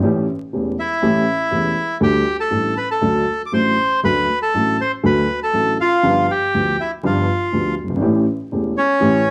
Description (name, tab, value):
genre	tango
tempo	121 BPM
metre	4/4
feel	rubato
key	unclear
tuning	A4 = 440 Hz
part	dark upright piano	accompaniment	0.0-9.2 s	E1 to A4	-21 LUFS	equal	none
part	bandoneon	melody	0.8-9.3 s	C#4 to D6	-20 LUFS	equal	none
room	moderate studio reverb, RT60 0.8 s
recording	dark, warm production, vinyl crackle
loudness	-18 LUFS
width	mono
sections	0.0-9.3 A section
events	none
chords	0.0 A7; 2.0 Dsus4; 3.0 D; 6.0 G7; 8.0 A7